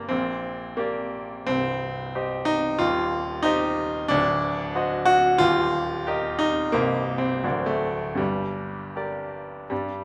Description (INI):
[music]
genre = classical, romantic character piece for solo piano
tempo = 78-95 BPM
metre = 2/4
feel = rubato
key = G minor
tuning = A4 = 437 Hz
[part]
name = clear grand piano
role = solo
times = 0.0-10.0 s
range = C1 to Eb5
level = -25 LUFS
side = equal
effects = none
[sound]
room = wet recital hall reverb, RT60 1.3 s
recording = none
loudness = -25 LUFS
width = mono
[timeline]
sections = 0.0-9.7 A section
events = none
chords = 0.1 Gm/Bb; 1.5 Cm; 2.8 Cm/Eb; 4.1 D7b9; 5.4 Eb; 6.7 Cm7; 7.4 D7; 8.2 Gm